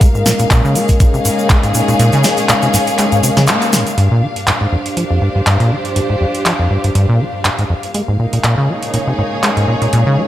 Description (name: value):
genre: acid house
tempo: 121 BPM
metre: 4/4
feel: swing 55% on 16ths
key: G phrygian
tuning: A4 = 440 Hz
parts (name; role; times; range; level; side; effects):
- dark analog pad; sustained chords; 0.0-10.3 s; G3 to Bb4; -22 LUFS; left 2 dB; chorus, sidechain pumping
- deep acid bass; riff; 0.0-10.2 s; F2 to Bb3; -15 LUFS; equal; sidechain pumping, tape echo
- electro analog drum machine; drums; 0.0-10.0 s; handclaps, hi-hat, snare drum; -18 LUFS; equal; none
- electronic kick drum; drums; 0.0-1.6 s; none; -10 LUFS; equal; none
- egg shaker; percussion; 0.0-4.0 s; none; -24 LUFS; left 2 dB; none
- warm studio string section; texture; 0.0-10.3 s; Bb3 to F5; -19 LUFS; left 1 dB; sidechain pumping
room: moderate lush hall reverb, RT60 1.8 s, digital ambience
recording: faint mains hum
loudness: -11 LUFS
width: side -13 dB against mid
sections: 0.0-4.0 A section; 4.0-10.3 B section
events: kick drops out 2.0-4.0; band accent 3.5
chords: 0.0 Bbm7; 4.0 Gm7; 7.9 Bbm7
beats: | 0.01 0.51 1.00 1.50 | 1.99 2.49 2.99 3.48 | 3.98 4.47 4.97 5.47 | 5.96 6.46 6.95 7.45 | 7.95 8.44 8.94 9.43 | 9.93